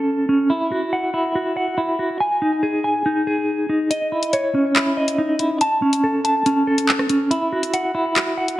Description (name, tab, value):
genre	hip hop, drill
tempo	141 BPM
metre	4/4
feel	half-time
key	C# minor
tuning	A4 = 440 Hz
part	clean electric guitar	arpeggios	0.0-8.6 s	C#4 to A5	-18 LUFS	equal	tremolo, low-pass filter, tape echo
part	drill drum kit	drums	3.9-8.6 s	handclaps, hi-hat, rim click	-21 LUFS	left 1 dB	vintage 12-bit sampler grit
room	light reverb, digital ambience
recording	none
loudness	-17 LUFS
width	side -15 dB against mid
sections	0.0-3.9 A section; 3.9-8.6 B section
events	kick muted 3.9-8.6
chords	0.0 A; 0.5 Esus2; 2.2 G#5; 3.9 C#madd9; 5.6 A; 7.3 Esus2